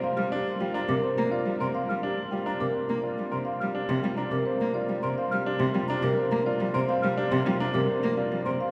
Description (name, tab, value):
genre	classical, minimalist pattern music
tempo	105 BPM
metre	3/4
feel	straight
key	G minor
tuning	A4 = 440 Hz
part	marimba with medium mallets	melody	0.0-8.7 s	G4 to G5	-32 LUFS	equal	none
part	clear concert grand piano	arpeggios	0.0-8.7 s	C4 to Bb4	-35 LUFS	equal	none
part	rich cello	accompaniment	0.2-8.6 s	C3 to Bb3	-31 LUFS	equal	none
part	mellow hollow silver concert flute	arpeggios	0.2-8.5 s	Bb5 to F6	-39 LUFS	equal	none
room	wet cathedral reverb, RT60 6.5 s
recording	heard from further back in the room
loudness	-27 LUFS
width	mono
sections	0.0-8.7 A section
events	none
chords	0.0 Gm7